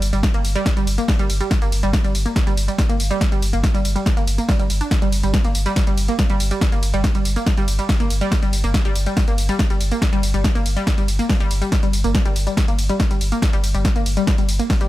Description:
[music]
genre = driving peak-time techno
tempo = 141 BPM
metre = 4/4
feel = straight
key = G minor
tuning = A4 = 439 Hz
[part]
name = saturated sub bass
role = bass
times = 0.0-14.9 s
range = G1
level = -22 LUFS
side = equal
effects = tube saturation, sidechain pumping, low-pass filter
[part]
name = punchy analog drum machine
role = drums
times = 0.0-14.9 s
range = hi-hat, ride cymbal, snare drum, tambourine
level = -25 LUFS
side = equal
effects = sidechain pumping on hats, sidechain pumping on perc, sidechain pumping on toms, sidechain pumping on cymbals
[part]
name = analog pluck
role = riff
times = 0.1-14.9 s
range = G3 to D4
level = -24 LUFS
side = equal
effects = chorus, sidechain pumping, dub echo
[part]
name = electronic kick drum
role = drums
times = 0.2-14.8 s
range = none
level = -19 LUFS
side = equal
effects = none
[sound]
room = little or no reverb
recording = none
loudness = -16 LUFS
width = side -16 dB against mid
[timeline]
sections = 0.0-14.9 A section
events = none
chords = 0.0 Gm

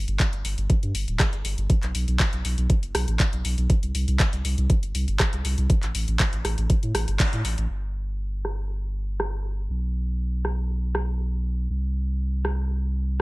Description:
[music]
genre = progressive house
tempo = 120 BPM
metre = 4/4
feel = straight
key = unclear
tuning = A4 = 439 Hz
[part]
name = saturated sub bass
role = bass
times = 0.0-13.2 s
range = D1 to A2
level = -25 LUFS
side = equal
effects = sidechain pumping
[part]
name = house drum kit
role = drums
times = 0.1-13.2 s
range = handclaps, hi-hat, rim click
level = -28 LUFS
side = equal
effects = low-pass filter on hats, low-pass filter on snare, low-pass filter on room
[part]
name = electronic kick drum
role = drums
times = 0.2-7.3 s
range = none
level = -21 LUFS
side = equal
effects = overdrive
[sound]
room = little or no reverb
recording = none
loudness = -22 LUFS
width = side -22 dB against mid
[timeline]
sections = 0.0-7.7 A section; 7.7-13.2 B section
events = band accent 7.2; filter sweep on drum 7.7-13.2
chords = none

